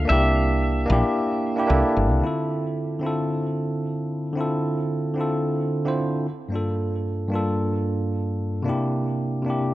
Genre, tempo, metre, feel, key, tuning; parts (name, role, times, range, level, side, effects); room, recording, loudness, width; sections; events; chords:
sunset chillout; 112 BPM; 4/4; swing 56% on 16ths; D minor; A4 = 440 Hz
bell-like tine electric piano; accompaniment; 0.0-9.7 s; G2 to C5; -22 LUFS; equal; auto-pan, digital delay
woody fretless electric bass; bass; 0.0-2.2 s; G1 to C2; -21 LUFS; equal; analog chorus
pedal steel guitar; melody; 0.1-1.9 s; E5; -27 LUFS; right 1 dB; tape echo
moderate lush hall reverb, RT60 1.6 s; worn, warbling old tape, cassette tape, warbly pitch drift; -21 LUFS; side -16 dB against mid
0.0-2.2 A section; 2.2-9.7 B section
0.1 C7; 2.2 Dm7; 6.2 Gm9; 8.7 C7